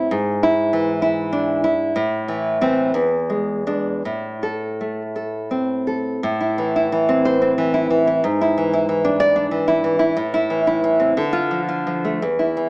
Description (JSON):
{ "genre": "romantic piece for solo classical guitar", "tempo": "52-66 BPM (dotted quarters)", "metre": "6/8", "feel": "rubato", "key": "A minor", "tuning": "A4 = 438 Hz", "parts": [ { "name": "nylon-string guitar", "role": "solo", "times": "0.0-12.7 s", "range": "E2 to D5", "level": "-17 LUFS", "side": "equal", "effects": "none" } ], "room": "moderate recital hall reverb, RT60 1.3 s", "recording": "small speaker sound", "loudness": "-17 LUFS", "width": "side -27 dB against mid", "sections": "0.0-6.2 A section; 6.2-12.7 A section", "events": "none", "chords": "0.1 E7/G#; 2.0 Am; 2.9 E7; 4.1 Am; 8.2 E7/G#; 10.2 Am; 11.2 Dm" }